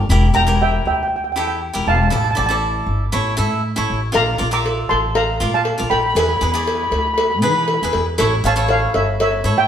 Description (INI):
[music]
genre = calypso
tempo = 119 BPM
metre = 4/4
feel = swing 53% on 16ths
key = unclear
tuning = A4 = 437 Hz
[part]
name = upright bass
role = bass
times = 0.0-9.7 s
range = E1 to E3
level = -20 LUFS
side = equal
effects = none
[part]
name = cavaquinho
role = accompaniment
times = 0.1-9.7 s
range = E4 to E5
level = -22 LUFS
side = equal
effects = none
[part]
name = steel pan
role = melody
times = 0.3-9.7 s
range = C#5 to D6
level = -19 LUFS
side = equal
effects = none
[part]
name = cowbell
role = percussion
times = 4.1-9.3 s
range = none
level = -22 LUFS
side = equal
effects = none
[sound]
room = wet stone room reverb, RT60 1.2 s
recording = band playing live in one room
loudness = -15 LUFS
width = side -9 dB against mid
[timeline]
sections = 0.0-9.7 A section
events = none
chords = 0.1 Em7b5; 2.1 A7sus4; 3.1 A; 4.1 Bbmaj7; 6.2 E7; 8.2 A7